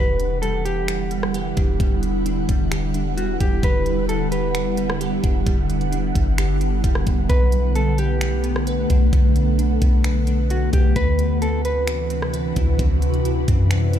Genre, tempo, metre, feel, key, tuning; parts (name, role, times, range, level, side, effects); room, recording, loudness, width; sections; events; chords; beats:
hip hop, atmospheric cloud-rap; 131 BPM; 4/4; half-time; E minor; A4 = 440 Hz
mellow electric guitar; melody; 0.0-12.3 s; F#4 to B4; -28 LUFS; equal; digital delay
ethereal airy pad; sustained chords; 0.0-14.0 s; C3 to F#5; -24 LUFS; equal; ensemble chorus, built-in reverb, phaser, sidechain pumping
glassy digital keys; arpeggios; 0.0-14.0 s; G3 to B4; -30 LUFS; right 2 dB; chorus, digital delay
soft 808-style bass; bass; 0.0-14.0 s; E1 to F#2; -21 LUFS; equal
trap drum kit; drums; 0.2-14.0 s; finger snaps, hi-hat, kick drum, rim click; -21 LUFS; equal
digital ambience; played on a big sound system in a bare room, large studio reverb; -18 LUFS; side -10 dB against mid
0.0-14.0 A section
0.0 Em9; 7.3 Bm7; 11.0 D13
0.43 0.89 1.34 | 1.80 2.26 2.72 3.17 | 3.63 4.09 4.55 5.01 | 5.47 5.92 6.38 6.84 | 7.30 7.76 8.21 8.67 | 9.13 9.59 10.05 10.50 | 10.96 11.42 11.88 12.34 | 12.79 13.25 13.71